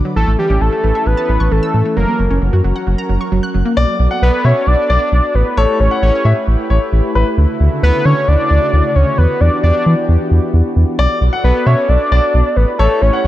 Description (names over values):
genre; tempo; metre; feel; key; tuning
pop; 133 BPM; 4/4; straight; B minor; A4 = 440 Hz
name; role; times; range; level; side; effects
lush unison pad; sustained chords; 0.0-13.3 s; C#3 to D5; -22 LUFS; equal; chorus
analog pluck; arpeggios; 0.0-3.7 s; E3 to F#6; -20 LUFS; right 2 dB; chorus, analog delay
fat analog lead; melody; 0.2-13.3 s; G4 to D5; -17 LUFS; equal; chorus, analog delay
round analog bass; bass; 0.2-13.3 s; F#1 to E3; -12 LUFS; equal; none
clear baby grand piano; second line; 3.8-7.2, 11.0-13.3 s; B4 to F#5; -20 LUFS; left 3 dB; analog delay
room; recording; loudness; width
light reverb; dark, warm production; -11 LUFS; side -14 dB against mid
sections
0.0-3.8 A section; 3.8-13.3 B section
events
none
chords
0.2 A; 2.0 F#; 3.8 Bm7; 5.3 A7; 7.4 Dmaj7; 9.2 Em7; 11.0 Bm7; 12.6 A7